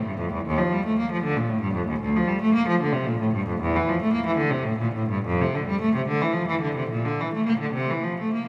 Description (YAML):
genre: classical, baroque-style suite movement for unaccompanied cello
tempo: 66-78 BPM (dotted quarters)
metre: 12/8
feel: rubato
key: F major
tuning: A4 = 440 Hz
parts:
  - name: rich cello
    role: solo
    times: 0.0-8.5 s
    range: D2 to Bb3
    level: -24 LUFS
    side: equal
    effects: none
room: wet church reverb, RT60 3.5 s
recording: none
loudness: -24 LUFS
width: mono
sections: 0.0-8.5 A section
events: none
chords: none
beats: 0.48 1.25 | 2.04 2.81 3.60 4.39 | 5.25 6.09 6.91 7.76